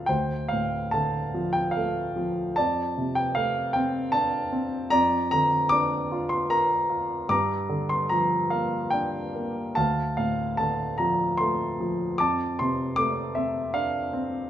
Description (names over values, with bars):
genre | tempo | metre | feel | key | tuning
classical, lyrical solo piano | 74 BPM | 3/4 | uneven beats, rubato | D minor | A4 = 440 Hz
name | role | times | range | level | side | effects
warm grand piano | solo | 0.0-14.5 s | D2 to D6 | -23 LUFS | equal | none
room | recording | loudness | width
moderate recital hall reverb, RT60 1.7 s | minimal, uncompressed stereo recording | -23 LUFS | side -11 dB against mid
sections
0.1-14.5 A section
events
none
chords
0.0 Dm7; 2.6 F6; 4.9 Bb/F; 7.3 Gm7; 9.8 Dm7; 12.2 F6